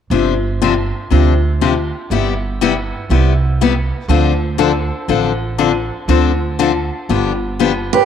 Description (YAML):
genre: acoustic string swing (jazz manouche)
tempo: 120 BPM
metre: 4/4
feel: swing 64% on 8ths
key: unclear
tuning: A4 = 440 Hz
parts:
  - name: picked steel-string acoustic guitar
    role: accompaniment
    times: 0.1-7.7 s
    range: C3 to A4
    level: -16 LUFS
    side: left 7 dB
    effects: none
  - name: upright bass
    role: bass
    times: 0.1-7.9 s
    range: G1 to D2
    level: -17 LUFS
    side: right 2 dB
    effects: none
  - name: concert harp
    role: melody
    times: 7.9-8.1 s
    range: B4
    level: -11 LUFS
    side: right 5 dB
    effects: none
  - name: picked steel-string acoustic guitar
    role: second line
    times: 7.9-8.1 s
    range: G4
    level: -12 LUFS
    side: right 12 dB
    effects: none
room: moderate spring reverb, RT60 2.5 s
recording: 1960s-style stereo with parts hard left and right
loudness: -13 LUFS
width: side -8 dB against mid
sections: 0.1-8.1 A section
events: none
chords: 0.1 G7sus4; 2.1 Cmaj7/G; 4.1 Dm7; 7.1 G7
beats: | 0.11 0.61 1.11 1.61 | 2.10 2.60 3.10 3.60 | 4.10 4.60 5.10 5.60 | 6.09 6.59 7.09 7.59